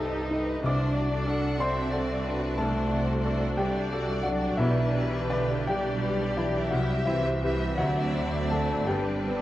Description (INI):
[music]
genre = classical, romantic movement for piano and orchestra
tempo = 52-64 BPM (dotted quarters)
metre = 12/8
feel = rubato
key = unclear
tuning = A4 = 440 Hz
[part]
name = clear grand piano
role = melody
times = 0.0-9.4 s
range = B1 to E6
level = -28 LUFS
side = left 1 dB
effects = none
[part]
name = rich chamber violin section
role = melody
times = 0.0-9.4 s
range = A4 to F#5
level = -36 LUFS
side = left 3 dB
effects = none
[part]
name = rich symphonic violin section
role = second line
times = 0.0-9.4 s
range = G3 to E5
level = -36 LUFS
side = left 1 dB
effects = none
[part]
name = rich symphonic viola section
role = accompaniment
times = 0.0-9.4 s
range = C4 to G4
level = -35 LUFS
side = equal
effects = none
[part]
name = rich chamber cello section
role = bass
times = 0.0-9.4 s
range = D3 to Eb4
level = -33 LUFS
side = right 2 dB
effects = none
[part]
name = warm chamber double bass section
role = bass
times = 0.0-9.4 s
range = G1 to D2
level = -33 LUFS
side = right 2 dB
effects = none
[sound]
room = wet scoring stage reverb, RT60 1.7 s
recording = worn, warbling old tape, cassette tape, warbly pitch drift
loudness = -25 LUFS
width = side -14 dB against mid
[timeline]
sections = 0.0-9.4 A section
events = none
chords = 0.0 Am7b5/C; 0.6 D7/C; 4.6 G/B; 6.7 Cmaj7; 7.8 D7; 8.9 G